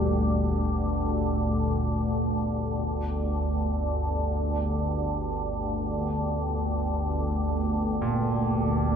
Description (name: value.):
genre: dark ambient drone.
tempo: free time.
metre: none.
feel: none.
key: G minor.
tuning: A4 = 440 Hz.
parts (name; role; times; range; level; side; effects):
sweeping resonant pad; sustained chords; 0.0-2.8 s; Bb2 to G4; -32 LUFS; left 1 dB; chorus, phaser.
organ-like drone; drone; 0.0-9.0 s; G1 to D2; -25 LUFS; equal; ensemble chorus, built-in reverb.
warm grand piano; arpeggios; 8.0-9.0 s; Bb2; -28 LUFS; right 3 dB; none.
room: moderate plate reverb, RT60 2.8 s.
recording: dreamy mix soaked in reverb, cassette tape.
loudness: -25 LUFS.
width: side -7 dB against mid.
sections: 0.0-2.8 A section; 2.8-9.0 B section.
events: none.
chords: 0.0 Gm.